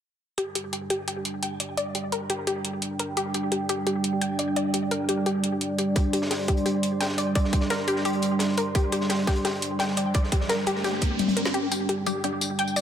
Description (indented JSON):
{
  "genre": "dark technical drum and bass",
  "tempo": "172 BPM",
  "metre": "4/4",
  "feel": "straight",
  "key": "unclear",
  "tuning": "A4 = 438 Hz",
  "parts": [
    { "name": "dark analog pad", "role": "sustained chords", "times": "0.4-12.8 s", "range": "G3 to C6", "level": "-28 LUFS", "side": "right 2 dB", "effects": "chorus, sidechain pumping" },
    { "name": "wide unison pluck", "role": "arpeggios", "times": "0.4-12.8 s", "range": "G4 to G5", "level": "-29 LUFS", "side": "left 2 dB", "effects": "cassette tape, sidechain pumping, tape echo" },
    { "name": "drum and bass drum kit", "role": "drums", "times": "0.4-12.8 s", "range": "hi-hat, snare drum, tambourine, toms", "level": "-29 LUFS", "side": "left 2 dB", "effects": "high-pass filter on hats, high-pass filter on toms, high-pass filter on snare, high-pass filter on perc, high-pass filter on room" },
    { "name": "crunchy breakbeat drum kit", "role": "drums", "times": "6.0-11.5 s", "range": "hi-hat, snare drum", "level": "-34 LUFS", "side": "right 1 dB", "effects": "high-pass filter on hats, high-pass filter on snare, high-pass filter on room" },
    { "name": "electronic kick drum", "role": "drums", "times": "6.0-11.1 s", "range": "none", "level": "-24 LUFS", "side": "right 1 dB", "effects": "overdrive" },
    { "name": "riser", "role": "sound effects", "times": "9.9-11.5 s", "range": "none", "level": "-32 LUFS", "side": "left 2 dB", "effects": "none" },
    { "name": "filtered dub chord stab", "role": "stabs", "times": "12.1-12.3 s", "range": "G3 to G4", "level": "-32 LUFS", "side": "left 3 dB", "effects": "phaser, ensemble chorus, tape echo" }
  ],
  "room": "moderate lush hall reverb, RT60 2.2 s",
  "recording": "none",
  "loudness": "-23 LUFS",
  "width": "side -9 dB against mid",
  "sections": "0.4-11.5 A section; 11.5-12.8 B section",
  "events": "filter sweep on synth arpeggio sound 0.4-11.5; riser 9.9-11.5; drum fill 11.2-11.5; build-up 11.5-12.8",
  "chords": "0.4 G5"
}